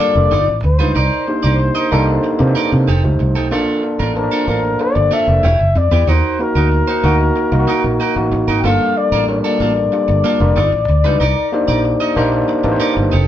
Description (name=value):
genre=pop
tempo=94 BPM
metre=4/4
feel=straight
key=unclear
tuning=A4 = 445 Hz
part: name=breathy flugelhorn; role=melody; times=0.0-13.1 s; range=Bb4 to G5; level=-18 LUFS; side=left 4 dB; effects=none
part: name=overdriven tine electric piano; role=accompaniment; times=0.0-13.2 s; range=G3 to A5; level=-18 LUFS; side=equal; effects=none
part: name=electric guitar at the edge of break-up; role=riff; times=0.0-13.3 s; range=Bb3 to Eb5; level=-21 LUFS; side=right 5 dB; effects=none
part: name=fingered electric bass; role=bass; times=0.2-13.3 s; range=E1 to C3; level=-16 LUFS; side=equal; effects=none
room=wet studio reverb, RT60 0.6 s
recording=band playing live in one room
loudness=-13 LUFS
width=side -11 dB against mid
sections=0.0-13.3 A section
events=none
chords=0.3 G7b13; 1.0 Cm9; 2.9 F9; 3.5 Bbmaj7; 5.4 Em; 6.1 Ebm; 8.6 Gm9; 10.6 G7b13; 11.2 Cm9